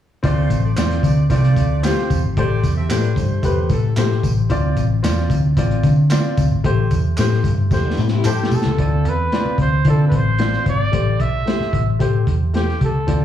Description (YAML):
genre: uptempo 1960s-style soul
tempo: 112 BPM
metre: 4/4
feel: straight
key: D dorian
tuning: A4 = 440 Hz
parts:
  - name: warm horn section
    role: second line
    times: 0.2-3.9 s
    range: E3 to E5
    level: -29 LUFS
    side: right 4 dB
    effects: slapback echo
  - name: warm grand piano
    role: accompaniment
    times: 0.2-13.2 s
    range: A3 to A5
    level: -24 LUFS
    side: left 4 dB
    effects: slapback echo
  - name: vintage muted picked electric bass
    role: bass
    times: 0.2-13.2 s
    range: G#1 to D3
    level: -17 LUFS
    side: equal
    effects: none
  - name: crunchy breakbeat drum kit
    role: drums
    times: 0.2-13.2 s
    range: hi-hat, kick drum, snare drum, toms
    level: -22 LUFS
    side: equal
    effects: none
  - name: tambourine and handclaps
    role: percussion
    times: 0.2-8.6 s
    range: none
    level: -34 LUFS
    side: right 3 dB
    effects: none
  - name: electric guitar through a small old amp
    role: riff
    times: 7.8-8.8 s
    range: B3 to A4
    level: -28 LUFS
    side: left 7 dB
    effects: tremolo, slapback echo
  - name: mellow trumpet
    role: melody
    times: 8.3-13.2 s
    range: G4 to E5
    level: -23 LUFS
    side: right 2 dB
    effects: slapback echo
room: little or no reverb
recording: live gig heard through the venue's PA, club reverb, studio ambience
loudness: -15 LUFS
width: side -10 dB against mid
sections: 0.2-8.8 A section; 8.8-13.2 B section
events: drum fill 7.7-8.8; grand piano fill 8.0-8.8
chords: 0.2 Dm7; 2.4 Am7; 4.5 Dm7; 6.6 Am7; 8.8 Dm7; 10.9 Am7